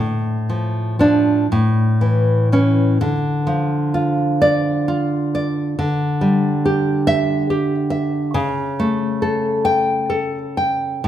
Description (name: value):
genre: romantic piece for solo classical guitar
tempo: 39-48 BPM (dotted quarters)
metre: 6/8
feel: rubato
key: D minor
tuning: A4 = 440 Hz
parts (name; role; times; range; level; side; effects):
- nylon-string guitar; solo; 0.0-11.1 s; A2 to G5; -16 LUFS; equal; none
room: wet large studio reverb, RT60 1.5 s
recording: band playing live in one room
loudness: -16 LUFS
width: side -11 dB against mid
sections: 0.0-3.0 A section; 3.0-11.1 B section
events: none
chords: 0.0 Dm/A; 1.5 A; 3.0 Dm; 5.8 Dsus24; 8.4 A7/C#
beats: 1.49 | 3.00 4.41 | 5.78 7.07 | 8.36 9.66 | 11.05